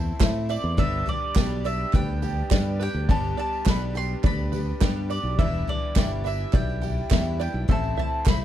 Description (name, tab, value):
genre	indie folk with a building arrangement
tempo	104 BPM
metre	4/4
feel	straight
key	unclear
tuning	A4 = 441 Hz
part	mandolin	melody	0.0-8.4 s	D5 to C6	-32 LUFS	right 1 dB	none
part	bright upright piano	accompaniment	0.0-8.4 s	G1 to E5	-36 LUFS	left 1 dB	none
part	picked twelve-string acoustic guitar	accompaniment	0.0-8.4 s	E2 to G4	-35 LUFS	left 4 dB	none
part	open-back banjo	arpeggios	0.0-8.4 s	G4 to E5	-35 LUFS	right 15 dB	none
part	fingered electric bass	bass	0.0-8.4 s	E1 to A2	-28 LUFS	equal	none
part	tambourine	percussion	0.1-8.4 s	none	-48 LUFS	right 18 dB	none
part	soft-mallet drum kit	drums	0.2-8.4 s	kick drum, snare drum, toms	-23 LUFS	equal	none
part	group handclap	percussion	0.2-8.4 s	none	-36 LUFS	right 16 dB	none
room	little or no reverb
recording	none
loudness	-22 LUFS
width	side -12 dB against mid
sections	0.0-8.4 A section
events	none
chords	0.0 Am; 0.8 G; 5.4 Em7; 7.7 Am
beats	0.20 | 0.78 1.36 1.93 2.51 | 3.08 3.66 4.24 4.81 | 5.39 5.96 6.54 7.11 | 7.69 8.27